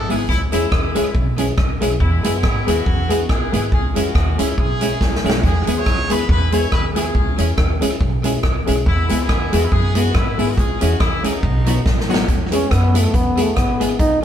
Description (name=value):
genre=ska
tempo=140 BPM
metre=4/4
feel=swing 56% on 8ths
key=E major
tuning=A4 = 440 Hz
part: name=clear horn section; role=melody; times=0.0-12.1 s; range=F#3 to C#5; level=-25 LUFS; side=left 1 dB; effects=none
part: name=upright bass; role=bass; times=0.0-14.2 s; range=G#1 to G#2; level=-20 LUFS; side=equal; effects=none
part: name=clean electric guitar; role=accompaniment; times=0.1-13.9 s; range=F#3 to G#4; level=-25 LUFS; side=right 3 dB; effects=tremolo
part: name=bright upright piano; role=stabs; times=0.1-14.2 s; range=F#3 to G#4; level=-24 LUFS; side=left 3 dB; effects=none
part: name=swinging big-band drum kit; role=drums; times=0.1-14.1 s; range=hi-hat, kick drum, rim click, snare drum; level=-19 LUFS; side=equal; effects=none
part: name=tambourine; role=percussion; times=0.1-13.9 s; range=none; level=-40 LUFS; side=right 4 dB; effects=none
part: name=warm trombone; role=melody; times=12.5-14.2 s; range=A3 to D#4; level=-19 LUFS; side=equal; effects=tape echo
room=moderate stone room reverb, RT60 1.3 s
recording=band playing live in one room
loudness=-15 LUFS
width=side -10 dB against mid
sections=0.0-12.3 A section; 12.3-14.2 B section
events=drum fill 5.0-5.4, 11.9-12.3; trombone solo 12.3-14.2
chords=0.3 C#m; 2.0 E; 3.7 C#m; 5.4 E; 7.1 C#m; 8.9 E; 10.6 C#m; 11.4 B; 12.3 E